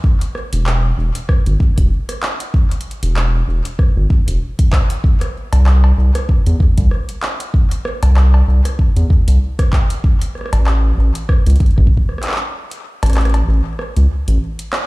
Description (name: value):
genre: IDM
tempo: 96 BPM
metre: 4/4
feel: swing 56% on 16ths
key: unclear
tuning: A4 = 439 Hz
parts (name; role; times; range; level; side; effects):
- electronic kick drum; drums; 0.0-12.1 s; none; -13 LUFS; equal; none
- booming analog drum machine; drums; 0.2-14.9 s; cowbell, handclaps, hi-hat, rim click; -24 LUFS; equal; ping-pong delay
- round analog bass; bass; 0.5-14.4 s; E1 to E2; -12 LUFS; equal; tube saturation
room: little or no reverb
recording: played on a big sound system in a bare room, large studio reverb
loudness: -13 LUFS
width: side -21 dB against mid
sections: 0.0-14.9 A section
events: break 12.5-14.9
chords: none